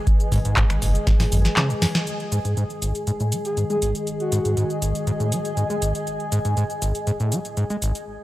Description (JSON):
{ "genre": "acid house", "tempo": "120 BPM", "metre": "4/4", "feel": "straight", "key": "G# minor", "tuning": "A4 = 439 Hz", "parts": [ { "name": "warbly tape-like pad", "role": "sustained chords", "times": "0.0-8.0 s", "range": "D#3 to B4", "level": "-32 LUFS", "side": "left 1 dB", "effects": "chorus, built-in reverb, sidechain pumping" }, { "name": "granular cloud pad", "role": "texture", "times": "0.0-8.1 s", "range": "G#4 to G#5", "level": "-29 LUFS", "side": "equal", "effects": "built-in reverb, sidechain pumping" }, { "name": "booming analog drum machine", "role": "drums", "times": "0.1-8.0 s", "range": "finger snaps, handclaps, hi-hat, shaker, snare drum", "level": "-26 LUFS", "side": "equal", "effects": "none" }, { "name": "electronic kick drum", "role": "drums", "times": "0.1-1.2 s", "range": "none", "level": "-19 LUFS", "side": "equal", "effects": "none" }, { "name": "overdriven acid bass", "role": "riff", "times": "0.3-7.9 s", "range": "G#1 to G#3", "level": "-24 LUFS", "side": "equal", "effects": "distortion, lush chorus, cassette tape" }, { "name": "round analog bass", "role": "bass", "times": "0.3-1.5 s", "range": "F#1 to G#1", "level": "-22 LUFS", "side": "equal", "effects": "sidechain pumping" }, { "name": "breathy flute-like synth lead", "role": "melody", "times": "3.5-4.7 s", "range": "F#4 to G#4", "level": "-28 LUFS", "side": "left 1 dB", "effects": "chorus, tremolo, analog delay" } ], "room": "light reverb", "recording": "dry, gritty hardware recording", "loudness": "-20 LUFS", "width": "side -16 dB against mid", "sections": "0.0-2.1 A section; 2.1-8.2 B section", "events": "drum fill 1.1-2.1; kick drops out 1.6-2.1; band accent 1.9; filter sweep on acid bass 2.1-8.2; break 8.1", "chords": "0.0 G#5", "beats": "| 0.07 0.57 1.07 1.57 | 2.07 2.57 3.07 3.57 | 4.07 4.57 5.07 5.57 | 6.07 6.57 7.07 7.57 | 8.07" }